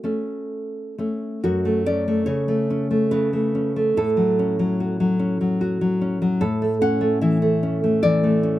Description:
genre	romantic piece for solo classical guitar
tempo	62-77 BPM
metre	3/4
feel	rubato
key	F# minor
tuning	A4 = 440 Hz
part	nylon-string guitar	solo	0.0-8.6 s	F#2 to F#5	-19 LUFS	equal	none
room	light reverb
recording	recorded outdoors, with no room sound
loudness	-19 LUFS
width	side -14 dB against mid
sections	0.0-1.4 A section; 1.4-8.6 B section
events	none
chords	0.0 F#m; 4.0 F#m/A; 6.4 A

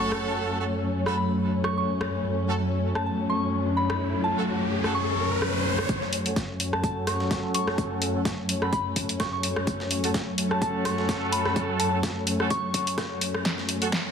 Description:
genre	bass house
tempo	127 BPM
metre	4/4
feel	swing 55% on 16ths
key	F# minor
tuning	A4 = 439 Hz
part	soft synth bell	melody	0.0-12.9 s	A5 to C#6	-31 LUFS	left 1 dB	chorus, dub echo
part	dark studio string section	sustained chords	0.0-14.1 s	F#2 to C#4	-27 LUFS	left 1 dB	sidechain pumping
part	brilliant horn section	stabs	0.0-13.9 s	A3 to A4	-32 LUFS	right 4 dB	sidechain pumping, low-pass filter, dub echo
part	impact and riser	sound effects	0.0-5.9, 14.0-14.1 s	none	-31 LUFS	left 1 dB	none
part	house drum kit	drums	0.1-14.0 s	hi-hat, rim click, snare drum	-31 LUFS	left 1 dB	soft clipping on snare
part	dusty soul sampler-style drum kit	drums	5.9-14.0 s	hi-hat, snare drum	-37 LUFS	right 2 dB	overdrive, sidechain pumping on hats, high-pass filter on hats, high-pass filter on snare
part	electronic kick drum	drums	5.9-14.0 s	none	-29 LUFS	equal	high-pass filter on kick
room	moderate plate reverb, RT60 1.8 s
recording	dense, heavily limited modern master, high-pass filter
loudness	-24 LUFS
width	side -7 dB against mid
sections	0.0-5.9 A section; 5.9-14.1 B section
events	impact 0.0; riser 2.9-5.9; build-up 5.9-14.1; filter sweep on horn section 5.9-14.1; drum fill 13.5-14.1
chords	0.0 F#m

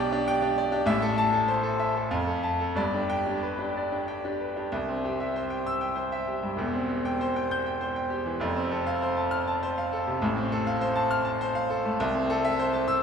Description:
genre	classical, virtuoso piano study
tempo	90-103 BPM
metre	3/4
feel	rubato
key	C major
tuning	A4 = 441 Hz
part	bright grand piano	solo	0.0-13.0 s	E1 to G6	-25 LUFS	equal	none
room	wet church reverb, RT60 2.9 s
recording	recorded in a church or concert hall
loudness	-25 LUFS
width	side -7 dB against mid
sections	0.0-4.7 A section; 4.7-13.0 B section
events	none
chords	0.0 G/B; 0.9 Am; 2.1 F; 2.8 G; 4.7 C; 6.6 C/E; 8.4 F; 10.2 F/A; 12.0 Am/C

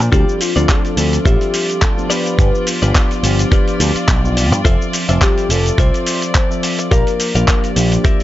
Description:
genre	nu-disco, nu disco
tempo	106 BPM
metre	4/4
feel	swing 56% on 16ths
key	unclear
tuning	A4 = 441 Hz
part	mellow tine electric piano	accompaniment	0.0-8.2 s	F3 to E5	-21 LUFS	equal	wide subtle chorus, sidechain pumping
part	warm chamber string section	sustained chords	0.0-8.2 s	D4 to D5	-26 LUFS	left 2 dB	sidechain pumping
part	direct-recorded clean electric guitar	riff	0.0-8.2 s	F4 to F5	-24 LUFS	left 4 dB	wide subtle chorus
part	picked electric bass with an envelope filter	bass	0.0-8.0 s	F1 to Bb2	-16 LUFS	equal	tube saturation
part	dusty soul sampler-style drum kit	drums	0.0-8.2 s	cabasa, handclaps, hi-hat	-20 LUFS	equal	none
part	soft octave-layered synth lead	melody	0.1-7.7 s	F4 to C5	-22 LUFS	left 2 dB	chorus, tape echo
part	electronic kick drum	drums	0.1-8.2 s	none	-14 LUFS	equal	none
room	little or no reverb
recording	nothing above 7.7 kHz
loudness	-12 LUFS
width	side -14 dB against mid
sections	0.0-8.2 A section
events	none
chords	0.1 Dm7; 2.1 G7; 4.7 Fmaj7; 6.9 Bb6

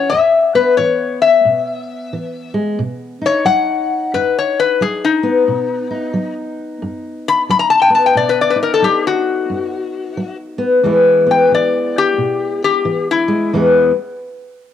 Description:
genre	acoustic country blues, solo or duo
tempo	90 BPM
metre	4/4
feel	swing 62% on 8ths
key	E major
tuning	A4 = 441 Hz
part	metal-body resonator slide guitar	melody	0.0-13.5 s	D#4 to B5	-14 LUFS	left 5 dB	cassette tape
part	fingerpicked steel-string acoustic guitar	accompaniment	0.0-13.9 s	E2 to G#4	-17 LUFS	left 1 dB	cassette tape
room	moderate spring reverb, RT60 1.7 s, studio ambience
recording	home recording on cassette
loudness	-12 LUFS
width	side -9 dB against mid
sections	0.0-13.5 A section; 13.5-14.7 B section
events	resonator guitar played with a steel bar solo 0.0-13.5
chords	0.1 E5; 2.8 B; 10.8 E

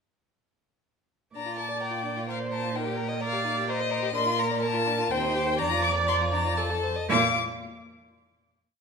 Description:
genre	quick classical-period movement for string quartet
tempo	115-130 BPM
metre	3/4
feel	rubato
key	Bb major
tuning	A4 = 436 Hz
part	warm violin	melody	1.4-7.4 s	Eb5 to D6	-29 LUFS	left 6 dB	none
part	warm violin	second line	1.4-7.4 s	C4 to F5	-33 LUFS	left 2 dB	none
part	rich viola	accompaniment	1.4-7.4 s	F4 to D5	-30 LUFS	right 2 dB	none
part	warm cello	bass	1.4-7.4 s	Eb2 to Bb2	-31 LUFS	right 4 dB	none
room	wet recital hall reverb, RT60 1.5 s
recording	minimal, uncompressed stereo recording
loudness	-24 LUFS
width	side -5 dB against mid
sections	1.4-7.1 A section; 7.1-8.6 final chord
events	none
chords	1.4 Bb; 5.1 Cm/Eb; 5.6 Bb/F; 6.6 F7; 7.1 Bb5

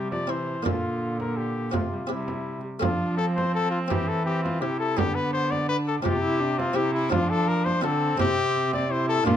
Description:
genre	classical, renaissance-style consort dance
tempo	167 BPM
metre	3/4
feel	straight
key	unclear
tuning	A4 = 441 Hz
part	warm cornet	melody	0.0-9.4 s	E4 to D5	-27 LUFS	left 4 dB	none
part	buff-stop harpsichord	accompaniment	0.0-9.4 s	Bb2 to G4	-31 LUFS	equal	none
part	warm viola	accompaniment	0.0-9.4 s	D3 to F4	-31 LUFS	equal	none
part	dark cello	bass	0.0-9.4 s	Bb2 to F3	-28 LUFS	right 2 dB	none
part	frame drum	percussion	0.1-9.4 s	none	-30 LUFS	right 3 dB	none
room	moderate stone room reverb, RT60 1.0 s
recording	none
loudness	-23 LUFS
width	side -10 dB against mid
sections	0.0-2.8 A section; 2.8-9.4 A section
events	none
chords	0.0 C; 0.7 Bb; 1.7 Csus4; 2.1 C; 2.8 F; 3.9 C/E; 5.0 Asus4/D (rootless); 6.1 Csus4; 6.8 C; 7.1 F; 8.2 C

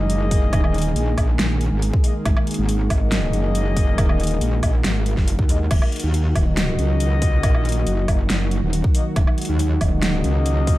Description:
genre	heavy wobble dubstep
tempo	139 BPM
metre	4/4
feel	half-time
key	Eb minor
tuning	A4 = 440 Hz
part	lush unison pad	sustained chords	0.0-10.8 s	Eb3 to Ab4	-27 LUFS	right 1 dB	chorus, sidechain pumping
part	mellow brass ensemble	stabs	0.0-10.8 s	Bb3 to Eb5	-29 LUFS	left 4 dB	vintage 12-bit sampler grit, digital delay
part	metallic wobble bass	bass	0.0-10.8 s	Eb1 to Eb2	-20 LUFS	equal	distortion, chorus, overdrive
part	dubstep drum kit	drums	0.1-10.8 s	crash cymbal, hi-hat, snare drum, woodblock	-26 LUFS	equal	studio reverb
part	electronic kick drum	drums	0.3-10.8 s	none	-19 LUFS	equal	studio reverb
room	little or no reverb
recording	dark, warm production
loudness	-17 LUFS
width	side -16 dB against mid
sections	0.0-10.8 A section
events	none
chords	0.0 Absus2; 5.7 Ebm

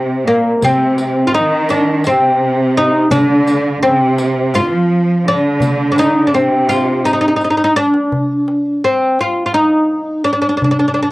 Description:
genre	Turkish makam ensemble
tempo	168 BPM (eighths)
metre	7/8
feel	straight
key	C makam ussak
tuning	A4 = 440 Hz
part	oud	melody	0.0-11.1 s	Bb3 to F4	-13 LUFS	equal	cassette tape
part	clear studio cello section	second line	0.0-7.4 s	Bb2 to F3	-16 LUFS	right 1 dB	cassette tape
part	darbuka	percussion	0.3-11.1 s	none	-21 LUFS	equal	none
part	riq	percussion	0.6-7.9 s	none	-28 LUFS	left 1 dB	none
room	light reverb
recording	home recording on cassette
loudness	-11 LUFS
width	side -19 dB against mid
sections	0.0-8.1 A section; 8.1-11.1 B section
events	drum fill 7.4-8.1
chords	none

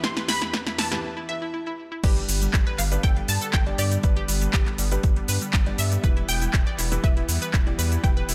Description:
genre	progressive house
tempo	120 BPM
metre	4/4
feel	straight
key	unclear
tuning	A4 = 440 Hz
part	unison pluck	melody	0.0-8.3 s	D5 to C6	-34 LUFS	equal	digital delay
part	lush unison pad	sustained chords	0.0-8.3 s	E2 to B4	-40 LUFS	equal	chorus, sidechain pumping
part	analog pluck	arpeggios	0.0-8.3 s	G3 to E5	-36 LUFS	equal	chorus, sidechain pumping, digital delay
part	warm grand piano	stabs	0.0-8.3 s	E3 to D5	-37 LUFS	equal	sidechain pumping, digital delay
part	deep house drum kit	drums	0.0-8.3 s	cabasa, crash cymbal, handclaps, hi-hat, snare drum	-30 LUFS	equal	overdrive
part	electronic kick drum	drums	0.0-8.1 s	none	-24 LUFS	equal	overdrive, high-pass filter on kick, high-pass filter on room
part	round analog bass	bass	2.0-8.3 s	E1 to G2	-28 LUFS	equal	sidechain pumping
room	little or no reverb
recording	none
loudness	-23 LUFS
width	mono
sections	0.0-2.0 A section; 2.0-8.3 B section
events	build-up 0.0-2.0; drum fill 0.0-1.0; break 1.0-2.0; drop 2.0-8.3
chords	0.0 Em; 2.0 G; 6.0 Em

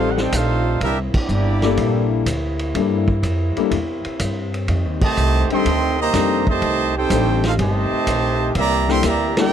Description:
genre	jazz, big band swing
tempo	124 BPM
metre	4/4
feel	swing 69% on 8ths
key	unclear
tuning	A4 = 440 Hz
part	clear trumpet section	melody	0.0-2.1, 5.0-9.5 s	Bb3 to C6	-21 LUFS	right 3 dB	none
part	clear trombone section	second line	0.0-2.1, 5.0-9.5 s	C3 to G4	-25 LUFS	right 7 dB	none
part	clear concert grand piano	accompaniment	0.0-9.5 s	G3 to D5	-21 LUFS	left 13 dB	none
part	mellow saxophone section	sustained chords	0.0-9.5 s	C3 to D5	-28 LUFS	left 1 dB	none
part	upright bass	bass	0.0-9.5 s	G1 to G2	-21 LUFS	equal	none
part	vintage drum kit	drums	0.2-9.4 s	crash cymbal, hi-hat, kick drum, ride cymbal, snare drum	-26 LUFS	equal	none
room	little or no reverb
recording	dry, close 1970s-style studio recording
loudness	-16 LUFS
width	side -9 dB against mid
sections	0.0-9.5 A section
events	band accent 1.1, 4.9, 9.3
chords	0.0 F13; 0.8 C13; 4.7 F13; 8.6 C13

